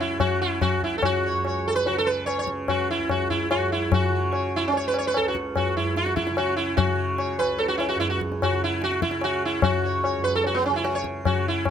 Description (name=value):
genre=indian classical, Hindustani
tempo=147 BPM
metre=7/4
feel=straight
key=unclear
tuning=A4 = 440 Hz
part: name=sitar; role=melody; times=0.0-11.7 s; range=B3 to C#5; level=-24 LUFS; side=right 2 dB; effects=none
part: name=tanpura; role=drone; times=0.0-11.7 s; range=C#2 to C#3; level=-31 LUFS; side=right 3 dB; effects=none
part: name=tabla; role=percussion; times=0.2-11.7 s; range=none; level=-26 LUFS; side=left 5 dB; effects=none
room=little or no reverb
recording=close, detailed microphones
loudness=-22 LUFS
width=side -8 dB against mid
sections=0.0-11.7 A section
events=none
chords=none